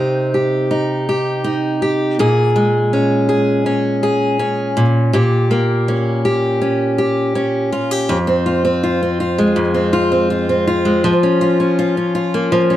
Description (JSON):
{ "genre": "pop", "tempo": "81 BPM", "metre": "4/4", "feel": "straight", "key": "F minor", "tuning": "A4 = 440 Hz", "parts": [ { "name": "picked steel-string acoustic guitar", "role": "solo", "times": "0.0-12.8 s", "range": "F2 to Ab4", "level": "-14 LUFS", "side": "equal", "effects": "slapback echo" } ], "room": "light reverb", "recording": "dark, warm production", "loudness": "-14 LUFS", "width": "side -13 dB against mid", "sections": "0.0-8.1 A section; 8.1-12.8 B section", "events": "none", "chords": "0.0 Cm; 2.2 Bbm7; 4.8 Gdim/Bb; 8.1 Fm; 11.0 Bbm/F", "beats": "0.71 1.45 | 2.19 2.93 3.66 4.40 | 5.14 5.88 6.62 7.35 | 8.09 8.83 9.57 10.31 | 11.04 11.78 12.52" }